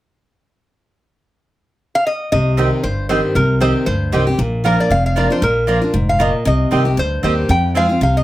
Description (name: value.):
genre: bluegrass.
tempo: 232 BPM.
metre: 4/4.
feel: swing 55% on 8ths.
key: C minor.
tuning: A4 = 437 Hz.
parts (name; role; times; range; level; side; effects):
lap resonator guitar; melody; 2.0-8.2 s; G4 to G5; -19 LUFS; equal; none.
picked steel-string acoustic guitar; accompaniment; 2.3-8.2 s; F2 to G4; -18 LUFS; left 1 dB; none.
upright bass; bass; 2.3-8.2 s; F1 to F2; -18 LUFS; equal; none.
mandolin; stabs; 2.6-7.9 s; Bb3 to Bb5; -20 LUFS; right 5 dB; none.
room: moderate studio ambience, RT60 0.5 s.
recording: none.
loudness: -14 LUFS.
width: side -15 dB against mid.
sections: 1.3-2.3 A section; 2.3-8.2 B section.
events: none.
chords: 1.3 N.C.; 2.3 Cm; 4.4 Bb; 6.5 Cm; 7.5 Fm.